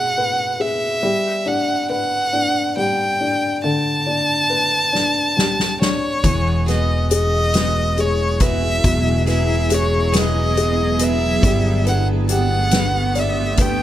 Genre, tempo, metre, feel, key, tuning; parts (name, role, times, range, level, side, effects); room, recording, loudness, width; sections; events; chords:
six-eight pop ballad; 46 BPM (dotted quarters); 6/8; straight; A4 = 441 Hz
warm violin; melody; 0.0-13.8 s; C#5 to A5; -20 LUFS; right 1 dB
dark upright piano; accompaniment; 0.0-13.8 s; B2 to D5; -22 LUFS; left 3 dB
soft-mallet drum kit; drums; 4.9-13.8 s; hi-hat, kick drum, snare drum; -20 LUFS; left 1 dB
granular cloud pad; sustained chords; 8.1-13.8 s; D3 to G#4; -24 LUFS; right 1 dB; built-in reverb
picked plugged-in steel-string acoustic guitar; arpeggios; 6.2-13.8 s; E2 to A4; -27 LUFS; right 5 dB
fretless electric bass; bass; 6.2-13.8 s; E1 to G1; -20 LUFS; equal
light reverb, small room ambience; -16 LUFS; side -12 dB against mid
0.0-13.8 A section
drum fill 4.9-6.2
0.0 Eadd9; 1.0 Gadd9; 6.2 Eadd9; 11.4 Gadd9